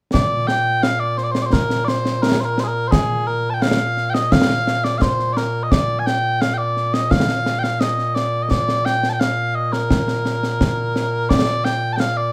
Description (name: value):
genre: scottish traditional, Scottish pipe music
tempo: 86 BPM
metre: 2/4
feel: straight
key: Bb mixolydian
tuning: A4 = 440 Hz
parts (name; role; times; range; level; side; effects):
- mellow small bagpipes; melody; 0.1-12.3 s; Bb2 to A5; -21 LUFS; equal; none
- concert snare drum and concert bass drum; drums; 0.1-12.2 s; none; -22 LUFS; equal; none
room: moderate studio ambience, RT60 0.5 s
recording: band playing live in one room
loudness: -19 LUFS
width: mono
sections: 0.1-11.3 A section; 11.3-12.3 A section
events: none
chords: none